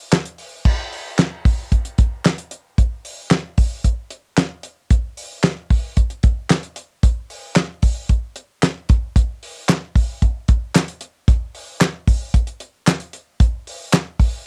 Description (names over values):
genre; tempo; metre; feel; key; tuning
funk; 113 BPM; 4/4; straight; none; none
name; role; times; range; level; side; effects
damped 70s drum kit; drums; 0.1-14.3 s; crash cymbal, handclaps, hi-hat, kick drum, snare drum; -18 LUFS; equal; cassette tape
group handclap; percussion; 9.7-14.1 s; none; -25 LUFS; equal; none
room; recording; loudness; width
little or no reverb; home recording on cassette; -20 LUFS; mono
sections
0.7-14.5 A section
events
none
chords
none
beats
0.12 | 0.66 1.19 1.72 2.25 | 2.79 3.32 3.85 4.38 | 4.91 5.44 5.97 6.51 | 7.04 7.57 8.10 8.63 | 9.16 9.69 10.22 10.75 | 11.28 11.81 12.34 12.87 | 13.40 13.93